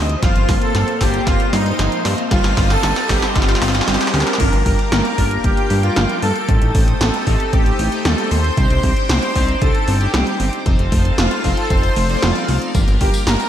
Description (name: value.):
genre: synthwave.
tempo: 115 BPM.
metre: 4/4.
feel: straight.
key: G minor.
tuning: A4 = 441 Hz.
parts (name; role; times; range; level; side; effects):
string machine, full ensemble; sustained chords; 0.0-13.5 s; Bb3 to Eb6; -27 LUFS; equal; ensemble chorus, sidechain pumping.
thumb-piano-like synth pluck; arpeggios; 0.0-13.5 s; F3 to G4; -27 LUFS; right 1 dB; chorus, ping-pong delay.
chorused polysynth; stabs; 0.0-13.5 s; G3 to D5; -26 LUFS; left 2 dB; cassette tape.
fat analog bass; bass; 0.0-13.4 s; F1 to G2; -19 LUFS; equal; none.
riser; sound effects; 0.2-4.4 s; none; -28 LUFS; equal; none.
80s electronic pad drums; drums; 0.1-13.5 s; crash cymbal, hi-hat, snare drum, tambourine; -22 LUFS; equal; high-pass filter on snare, high-pass filter on hats, high-pass filter on cymbals, high-pass filter on perc, gated reverb.
soft supersaw; melody; 0.2-13.5 s; Eb4 to C5; -23 LUFS; equal; ping-pong delay.
airy dreamy lead; second line; 0.2-13.5 s; Eb5 to C6; -28 LUFS; right 1 dB; chorus, ping-pong delay.
electronic kick drum; drums; 0.2-13.1 s; none; -18 LUFS; equal; none.
room: light reverb.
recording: bright 1980s-style digital production.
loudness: -14 LUFS.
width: side -10 dB against mid.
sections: 0.0-4.4 A section; 4.4-13.5 B section.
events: drum fill 0.0-4.4; filter sweep on string machine 0.0-4.4; riser 0.2-4.4.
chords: 0.2 Bbsus2/G; 2.3 Cm/G; 4.4 Gm7; 6.5 Am7b5; 8.6 Cmadd9; 10.7 F7; 12.7 Gm7.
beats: | 0.23 0.75 1.27 1.79 | 2.31 2.83 3.35 3.88 | 4.40 4.92 5.44 5.96 | 6.49 7.01 7.53 8.05 | 8.57 9.10 9.62 10.14 | 10.66 11.18 11.70 12.22 | 12.75 13.27.